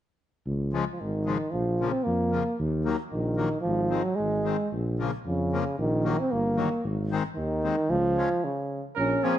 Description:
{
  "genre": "alpine folk, alpine dance band",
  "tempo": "113 BPM",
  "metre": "2/4",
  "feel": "straight",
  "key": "Db major",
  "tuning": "A4 = 440 Hz",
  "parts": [
    { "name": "mellow tuba", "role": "bass", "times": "0.5-9.2 s", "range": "G1 to F2", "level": "-29 LUFS", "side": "equal", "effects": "none" },
    { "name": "accordion", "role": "accompaniment", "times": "0.7-9.4 s", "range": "Db3 to Db4", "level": "-32 LUFS", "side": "left 6 dB", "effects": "none" },
    { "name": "warm euphonium", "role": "melody", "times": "0.9-9.4 s", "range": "Db3 to Db4", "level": "-27 LUFS", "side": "right 1 dB", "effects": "none" },
    { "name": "warm trumpet", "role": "second line", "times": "9.0-9.4 s", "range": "Ab4 to Bb4", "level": "-28 LUFS", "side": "right 7 dB", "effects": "none" }
  ],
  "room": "light reverb",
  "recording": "dark, warm production, nothing above 10.4 kHz",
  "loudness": "-25 LUFS",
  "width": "side -11 dB against mid",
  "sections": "0.5-9.0 A section",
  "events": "stop 8.4-9.0",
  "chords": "0.5 Db; 1.5 Bbm; 2.6 Ebm; 3.6 Ab; 4.7 Bbm; 5.8 Ebm/Bb; 6.8 Ab; 7.9 Db",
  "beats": "| 0.45 0.99 | 1.52 2.06 | 2.58 3.11 | 3.64 4.18 | 4.72 5.26 | 5.79 6.32 | 6.85 7.37 | 7.90 8.44 | 8.97"
}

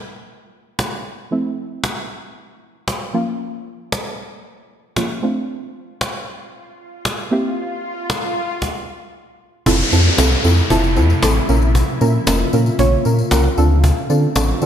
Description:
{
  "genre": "dance-pop",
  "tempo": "115 BPM",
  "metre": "4/4",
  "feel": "straight",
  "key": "F major",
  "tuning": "A4 = 439 Hz",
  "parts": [
    { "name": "deep mellow chord stab", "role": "accompaniment", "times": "0.0-14.7 s", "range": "F3 to Db5", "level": "-20 LUFS", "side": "right 2 dB", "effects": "chorus" },
    { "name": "cajon", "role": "drums", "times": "0.8-14.7 s", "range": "none", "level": "-23 LUFS", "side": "equal", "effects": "none" },
    { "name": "swell and downlifter", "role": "sound effects", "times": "7.1-13.8 s", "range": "none", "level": "-23 LUFS", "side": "left 1 dB", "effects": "none" },
    { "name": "shimmering ambient pad", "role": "sustained chords", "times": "10.6-14.7 s", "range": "C3 to F4", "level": "-23 LUFS", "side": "left 1 dB", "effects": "chorus, built-in reverb" },
    { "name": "sub bass with octave", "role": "bass", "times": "9.7-14.7 s", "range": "F1 to D3", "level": "-16 LUFS", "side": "equal", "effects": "none" },
    { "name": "tambourine", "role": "percussion", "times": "9.7-14.7 s", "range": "none", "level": "-31 LUFS", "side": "left 10 dB", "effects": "none" }
  ],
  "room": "moderate lush hall reverb, RT60 1.8 s, small room ambience",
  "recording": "bright 1980s-style digital production",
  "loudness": "-15 LUFS",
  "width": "side -9 dB against mid",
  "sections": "0.0-9.7 A section; 9.7-14.7 B section",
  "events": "swell 7.1-9.7; stop 8.6-9.7",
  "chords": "0.0 Ebadd9; 1.3 Fmaj7; 3.1 Bbm; 5.2 Dm7; 7.3 C7; 9.7 Fmaj7; 11.5 Bbm; 13.6 Dm7",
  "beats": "0.27 0.79 | 1.31 1.84 2.36 2.88 | 3.40 3.92 4.45 4.97 | 5.49 6.01 6.53 7.05 | 7.58 8.10 8.62 9.14 | 9.66 10.18 10.71 11.23 | 11.75 12.27 12.79 13.31 | 13.84 14.36"
}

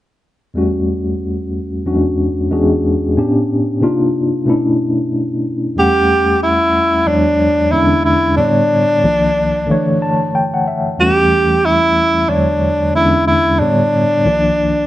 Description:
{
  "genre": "R&B",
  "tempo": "92 BPM",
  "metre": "4/4",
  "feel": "swing 59% on 16ths",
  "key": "E dorian",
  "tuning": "A4 = 442 Hz",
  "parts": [
    { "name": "tine electric piano", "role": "accompaniment", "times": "0.5-14.9 s", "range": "C2 to A5", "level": "-15 LUFS", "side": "left 1 dB", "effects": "medium tremolo" },
    { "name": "breathy tenor saxophone", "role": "melody", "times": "5.8-14.9 s", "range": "D4 to G4", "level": "-13 LUFS", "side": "equal", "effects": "slapback echo, plate reverb" }
  ],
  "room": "moderate studio reverb, RT60 0.6 s",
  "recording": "nothing above 10.5 kHz",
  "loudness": "-12 LUFS",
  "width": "side -14 dB against mid",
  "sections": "0.6-5.8 A section; 5.8-14.9 B section",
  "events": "tine electric piano fill 9.7-11.0",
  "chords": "0.6 Em69; 1.9 E13; 3.2 A7sus4; 3.8 Cm9; 4.5 Bm9; 5.8 Em69; 7.1 E9; 7.7 E6; 8.4 A7sus4; 9.0 Cm9; 9.7 Dmaj9; 11.0 Em6; 12.3 E9; 12.9 E6; 13.6 A7sus4; 14.3 Cm9",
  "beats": "| 0.56 1.21 1.86 2.52 | 3.17 3.82 4.47 5.12 | 5.78 6.43 7.08 7.73 | 8.38 9.04 9.69 10.34 | 10.99 11.65 12.30 12.95 | 13.60 14.25"
}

